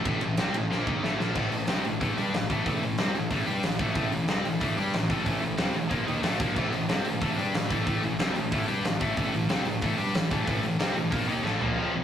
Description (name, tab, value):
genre	heavy metal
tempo	184 BPM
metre	4/4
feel	straight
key	unclear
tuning	A4 = 440 Hz
part	scooped high-gain guitar	riff	0.0-12.0 s	F2 to G4	-28 LUFS	left 1 dB	distortion
part	fuzz picked electric bass	bass	0.0-11.8 s	A1 to G2	-33 LUFS	equal	overdrive
part	big rock drum kit	drums	0.1-11.7 s	crash cymbal, hi-hat, kick drum, ride cymbal, snare drum, toms	-29 LUFS	equal	none
room	moderate small room ambience, RT60 0.5 s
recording	rough rehearsal-room recording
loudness	-25 LUFS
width	side -9 dB against mid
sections	0.0-1.4 A section; 1.4-11.8 B section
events	drum fill 0.7-1.4, 11.4-11.8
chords	0.0 Am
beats	| 0.05 0.38 0.70 1.03 | 1.36 1.68 2.01 2.33 | 2.66 2.99 3.31 3.64 | 3.96 4.29 4.62 4.94 | 5.27 5.59 5.92 6.24 | 6.57 6.89 7.22 7.54 | 7.87 8.20 8.52 8.85 | 9.17 9.50 9.82 10.15 | 10.47 10.80 11.12 11.45 | 11.77